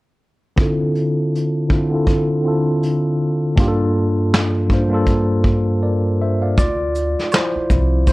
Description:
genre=lo-fi hip hop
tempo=80 BPM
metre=4/4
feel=swing 58% on 16ths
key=D minor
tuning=A4 = 441 Hz
part: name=tine electric piano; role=accompaniment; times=0.6-8.1 s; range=G2 to F5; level=-17 LUFS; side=equal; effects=medium stereo tremolo, cassette tape, low-pass filter
part: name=vintage brush drum kit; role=drums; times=0.6-8.1 s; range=handclaps, hi-hat, kick drum, shaker, snare drum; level=-18 LUFS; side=equal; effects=none
part: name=upright bass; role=bass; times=6.6-8.1 s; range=C2 to D2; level=-19 LUFS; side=equal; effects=none
part: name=maracas and woodblock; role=percussion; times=6.6-8.1 s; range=none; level=-35 LUFS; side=right 4 dB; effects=none
room=moderate small room reverb, RT60 0.5 s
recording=worn, warbling old tape, cassette tape, warbly pitch drift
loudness=-15 LUFS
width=side -21 dB against mid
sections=0.6-6.6 A section; 6.6-8.1 B section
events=filter sweep on tine electric piano 0.6-6.6; drums muted 5.8-6.6; tine electric piano solo 6.6-8.1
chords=0.6 Dm9; 3.6 Gm9; 6.6 Dm9

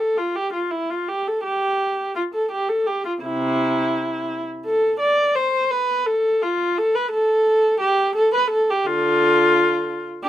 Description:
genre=classical, baroque-style suite movement for unaccompanied viola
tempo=85 BPM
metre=4/4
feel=rubato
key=unclear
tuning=A4 = 441 Hz
part: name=dark viola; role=solo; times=0.0-10.3 s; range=C3 to D5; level=-18 LUFS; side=equal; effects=none
room=little or no reverb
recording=close, detailed microphones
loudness=-18 LUFS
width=side -12 dB against mid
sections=0.0-10.3 A section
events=none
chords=none

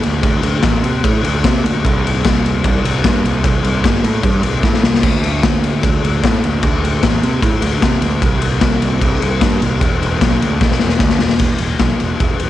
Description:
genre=garage rock duo or trio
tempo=150 BPM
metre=4/4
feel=straight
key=unclear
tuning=A4 = 436 Hz
part: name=fuzz picked electric bass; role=bass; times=0.0-12.5 s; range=E1 to C3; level=-17 LUFS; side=right 2 dB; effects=overdrive
part: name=raw garage drum kit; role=drums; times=0.0-12.5 s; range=crash cymbal, kick drum, ride cymbal, snare drum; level=-14 LUFS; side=left 1 dB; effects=vintage 12-bit sampler grit
room=moderate echo chamber reverb, RT60 1.7 s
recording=1960s-style stereo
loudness=-12 LUFS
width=side -13 dB against mid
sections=0.0-11.4 A section; 11.4-12.5 B section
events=drum fill 4.6-5.0, 10.6-11.4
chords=none

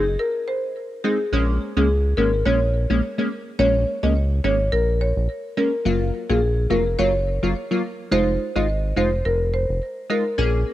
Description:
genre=dancehall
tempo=106 BPM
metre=4/4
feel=swing 56% on 16ths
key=Bb minor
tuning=A4 = 440 Hz
part: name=marimba with hard mallets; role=melody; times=0.0-10.2 s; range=Ab4 to Eb5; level=-24 LUFS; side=equal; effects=tape echo
part: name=wavetable chord stab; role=accompaniment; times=0.0-10.7 s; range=Gb3 to Ab4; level=-24 LUFS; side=equal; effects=cassette tape
part: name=round analog bass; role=bass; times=0.0-10.6 s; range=F1 to Db2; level=-22 LUFS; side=equal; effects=none
room=light reverb, small room ambience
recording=home recording on cassette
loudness=-19 LUFS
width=side -14 dB against mid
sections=0.0-1.3 A section; 1.3-10.7 B section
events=break 0.2-1.3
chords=0.0 Ab; 1.3 Bbm7; 5.9 Gbmaj7; 8.1 Fm7

